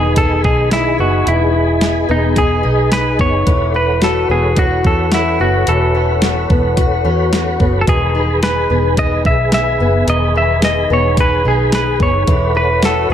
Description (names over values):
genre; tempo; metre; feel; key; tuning
dream pop; 109 BPM; 4/4; straight; E major; A4 = 440 Hz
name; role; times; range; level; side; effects
semi-hollow electric guitar; melody; 0.0-13.1 s; D#4 to E5; -17 LUFS; equal; ping-pong delay
mellow tonewheel organ; sustained chords; 0.0-13.1 s; G#4 to B5; -22 LUFS; right 1 dB; chorus vibrato, fast rotary speaker
fingerpicked twelve-string acoustic guitar; arpeggios; 0.0-13.1 s; D#3 to G#4; -19 LUFS; left 4 dB; wide subtle chorus, ping-pong delay
vintage muted fingered electric bass; bass; 0.0-13.1 s; E1 to E2; -17 LUFS; right 1 dB; none
crisp 8-bit digital drum machine; drums; 0.2-13.0 s; hi-hat, kick drum, snare drum; -16 LUFS; equal; none
room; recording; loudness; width
light reverb, digital ambience; none; -12 LUFS; side -9 dB against mid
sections
0.0-13.1 A section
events
none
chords
0.0 Emaj7; 3.5 A69/E; 7.9 Emaj7; 12.3 A69/E